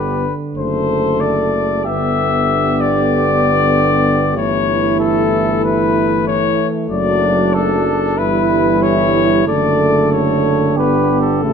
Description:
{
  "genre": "classical, brass quintet",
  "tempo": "94 BPM",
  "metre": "4/4",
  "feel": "rubato",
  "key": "D major",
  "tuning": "A4 = 440 Hz",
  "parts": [
    { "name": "mellow trumpet", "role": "melody", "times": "0.0-11.5 s", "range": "A4 to E5", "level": "-17 LUFS", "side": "left 7 dB", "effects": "none" },
    { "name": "mellow flugelhorn", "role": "second line", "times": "0.0-11.5 s", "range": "D4 to A4", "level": "-21 LUFS", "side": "right 8 dB", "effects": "none" },
    { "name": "mellow French horn", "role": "accompaniment", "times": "0.0-11.5 s", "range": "G3 to B3", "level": "-21 LUFS", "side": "left 5 dB", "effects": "none" },
    { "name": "mellow trombone", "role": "accompaniment", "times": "0.0-11.5 s", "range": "C#3 to F#3", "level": "-20 LUFS", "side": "right 4 dB", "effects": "none" },
    { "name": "clear bass trombone", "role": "bass", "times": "0.0-11.5 s", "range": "F#1 to A1", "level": "-21 LUFS", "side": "right 2 dB", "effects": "none" }
  ],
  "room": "moderate recital hall reverb, RT60 1.8 s",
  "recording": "close, detailed microphones",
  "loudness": "-13 LUFS",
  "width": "side -7 dB against mid",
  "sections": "0.0-11.5 A section",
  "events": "none",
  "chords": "0.0 G; 0.6 D7/F#; 1.9 G; 4.4 A7/G; 6.9 D/F#; 8.2 Em/G; 9.5 D/F#; 10.8 G"
}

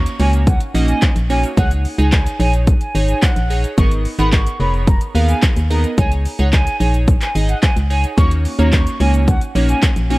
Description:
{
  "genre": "dance-pop",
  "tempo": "109 BPM",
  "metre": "4/4",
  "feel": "straight",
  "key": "unclear",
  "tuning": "A4 = 440 Hz",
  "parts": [
    { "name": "mellow concert flute", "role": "melody", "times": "0.0-10.2 s", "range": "F#5 to C#6", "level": "-24 LUFS", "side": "right 1 dB", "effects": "sidechain pumping" },
    { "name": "glassy digital keys", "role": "accompaniment", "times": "0.0-10.2 s", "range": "A#3 to F#5", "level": "-22 LUFS", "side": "right 2 dB", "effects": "chorus, sidechain pumping" },
    { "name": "organ-like FM bass", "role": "bass", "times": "0.0-10.2 s", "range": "E#1 to D#2", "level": "-16 LUFS", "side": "equal", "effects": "sidechain pumping" },
    { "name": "pop drum kit", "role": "drums", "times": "0.1-10.2 s", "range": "handclaps, hi-hat, kick drum, shaker", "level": "-16 LUFS", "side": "equal", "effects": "overdrive" }
  ],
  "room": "little or no reverb",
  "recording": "worn, warbling old tape, cassette tape, warbly pitch drift",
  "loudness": "-13 LUFS",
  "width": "side -20 dB against mid",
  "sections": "0.0-10.2 A section",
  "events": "none",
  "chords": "0.0 D#m7; 1.6 C#sus2; 3.8 G#madd9; 6.0 C#sus2; 8.2 D#m7"
}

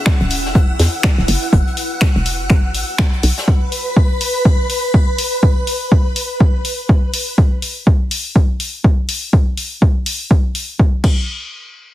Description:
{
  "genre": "deep house",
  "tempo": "123 BPM",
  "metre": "4/4",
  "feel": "swing 59% on 16ths",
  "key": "unclear",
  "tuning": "A4 = 443 Hz",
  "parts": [
    { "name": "granular cloud pad", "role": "texture", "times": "0.0-3.5 s", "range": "C#4 to E6", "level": "-29 LUFS", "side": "right 1 dB", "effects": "built-in reverb, sidechain pumping" },
    { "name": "string machine, violins", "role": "texture", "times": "0.0-7.4 s", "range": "B4 to E6", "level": "-23 LUFS", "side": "equal", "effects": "ensemble chorus" },
    { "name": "deep house drum kit", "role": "drums", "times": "0.1-11.2 s", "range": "crash cymbal, finger snaps, hi-hat", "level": "-21 LUFS", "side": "left 2 dB", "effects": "none" },
    { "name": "electronic kick drum", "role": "drums", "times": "0.1-11.2 s", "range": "none", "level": "-12 LUFS", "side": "equal", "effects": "none" },
    { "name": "unplugged drum kit", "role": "drums", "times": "0.1-3.5 s", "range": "hi-hat, snare drum", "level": "-29 LUFS", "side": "left 2 dB", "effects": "sidechain pumping on hats, high-pass filter on hats, high-pass filter on snare, high-pass filter on room" },
    { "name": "hollow knocking FM bass", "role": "bass", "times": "0.2-3.3 s", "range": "D1 to E2", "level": "-17 LUFS", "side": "equal", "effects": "sidechain pumping" }
  ],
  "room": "little or no reverb",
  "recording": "heavily compressed radio sound, multiband compression",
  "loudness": "-13 LUFS",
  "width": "side -14 dB against mid",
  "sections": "0.0-11.3 A section",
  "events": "fade-out on ambient pad 0.0-3.5",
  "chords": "0.0 Em9; 1.3 F#m7; 3.5 N.C."
}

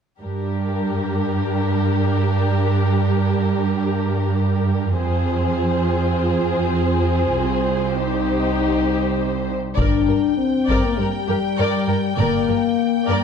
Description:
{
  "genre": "cinematic, epic orchestral film score",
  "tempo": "100 BPM",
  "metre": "4/4",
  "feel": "straight",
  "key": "G phrygian",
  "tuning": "A4 = 440 Hz",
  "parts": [
    { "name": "dark symphonic violin section", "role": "second line", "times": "0.2-13.2 s", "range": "G4 to D5", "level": "-25 LUFS", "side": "left 2 dB", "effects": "none" },
    { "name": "warm symphonic viola section", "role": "accompaniment", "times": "0.2-13.2 s", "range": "G3 to Bb4", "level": "-24 LUFS", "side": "equal", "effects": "none" },
    { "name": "warm symphonic cello section", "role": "bass", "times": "0.2-13.2 s", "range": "C2 to G2", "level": "-21 LUFS", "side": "right 3 dB", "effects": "none" },
    { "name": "rich symphonic violin section", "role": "melody", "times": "9.8-13.2 s", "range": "G5", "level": "-30 LUFS", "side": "left 4 dB", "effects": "none" },
    { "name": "mellow French horn section", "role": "sustained chords", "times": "9.8-13.2 s", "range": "G3 to D4", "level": "-20 LUFS", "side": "left 7 dB", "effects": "none" },
    { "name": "warm studio double bass section", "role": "bass", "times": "9.8-12.5 s", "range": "G1", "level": "-24 LUFS", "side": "right 4 dB", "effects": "none" },
    { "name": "taiko ensemble", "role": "drums", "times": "9.8-11.0 s", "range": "none", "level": "-23 LUFS", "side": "left 1 dB", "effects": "none" }
  ],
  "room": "moderate scoring stage reverb, RT60 1.6 s",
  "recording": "dark, warm production",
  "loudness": "-18 LUFS",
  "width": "side -7 dB against mid",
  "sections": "0.2-9.8 A section; 9.8-13.2 B section",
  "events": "none",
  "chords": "0.2 Gm; 5.0 Fm; 7.4 Cm; 9.8 Gm"
}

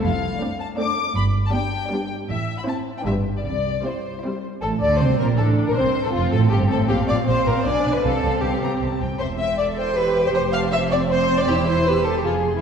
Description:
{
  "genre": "quick classical-period movement for string orchestra",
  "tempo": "158 BPM",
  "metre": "3/4",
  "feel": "straight",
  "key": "C major",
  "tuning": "A4 = 442 Hz",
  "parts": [
    { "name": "rich studio violin section", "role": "melody", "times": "0.0-12.6 s", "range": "F4 to E6", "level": "-29 LUFS", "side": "left 6 dB", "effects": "none" },
    { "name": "rich studio violin section", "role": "second line", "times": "0.0-12.6 s", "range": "D4 to F5", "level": "-23 LUFS", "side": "left 1 dB", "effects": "none" },
    { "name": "rich studio viola section", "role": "accompaniment", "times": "0.0-12.6 s", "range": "G3 to A4", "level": "-26 LUFS", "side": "right 1 dB", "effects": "none" },
    { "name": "warm studio cello section", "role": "bass", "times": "0.0-12.6 s", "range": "E2 to D3", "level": "-26 LUFS", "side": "right 2 dB", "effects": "none" },
    { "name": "warm studio double bass section", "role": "bass", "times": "0.0-12.6 s", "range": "E1 to D2", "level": "-25 LUFS", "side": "right 2 dB", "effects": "none" }
  ],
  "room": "wet scoring stage reverb, RT60 2.0 s",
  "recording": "heard from further back in the room",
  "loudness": "-19 LUFS",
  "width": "side -7 dB against mid",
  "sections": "0.0-4.6 A section; 4.6-12.6 B section",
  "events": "none",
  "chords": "0.0 Dm7/F; 1.2 G; 2.3 Am; 3.1 G7; 3.5 C; 4.6 Bbmaj9/A; 5.8 F; 6.9 Bbsus2; 7.7 Bm6; 8.0 Csus4; 9.2 A7sus2/E; 10.3 F; 11.5 C/E; 12.2 Fm"
}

